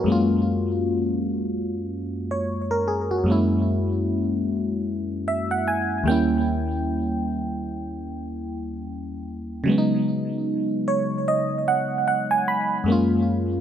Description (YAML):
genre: R&B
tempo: 75 BPM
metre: 4/4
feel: swing 58% on 16ths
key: F# major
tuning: A4 = 440 Hz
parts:
  - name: FM electric piano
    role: solo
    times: 0.0-13.6 s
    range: D#2 to B5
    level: -21 LUFS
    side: equal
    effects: chorus, phaser, digital delay
room: moderate booth ambience, RT60 0.2 s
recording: none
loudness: -21 LUFS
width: side -9 dB against mid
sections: 0.0-12.9 A section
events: FM electric piano fill 4.9-6.5, 10.5-12.9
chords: 0.1 F#maj9; 3.3 F#9; 6.1 D#7b9; 9.7 C#9sus4; 12.9 F#maj9